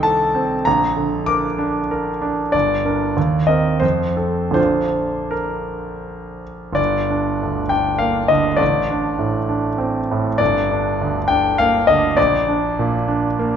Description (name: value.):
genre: classical, romantic character piece for solo piano.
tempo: 76-103 BPM.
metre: 3/4.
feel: rubato.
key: Bb major, G minor from 6.8 s.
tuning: A4 = 439 Hz.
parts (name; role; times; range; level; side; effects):
clear grand piano; solo; 0.0-13.6 s; G1 to D6; -16 LUFS; equal; none.
room: wet recital hall reverb, RT60 1.4 s.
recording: nothing above 7.9 kHz.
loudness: -16 LUFS.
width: side -8 dB against mid.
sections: 0.0-6.8 A section; 6.8-13.6 B section.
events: none.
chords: 0.0 F7/C; 0.7 Bb; 2.5 Gm; 3.2 Cm7/Eb; 3.8 F; 4.6 Bb; 6.8 Gm; 8.6 D5/A; 10.4 Gm; 12.2 Bb.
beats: 0.03 | 0.66 1.27 1.91 | 2.54 3.16 3.82 | 4.57 5.34 6.07 | 6.78 7.41 8.02 | 8.61 9.21 9.81 | 10.40 11.00 11.58 | 12.17 12.77 13.38.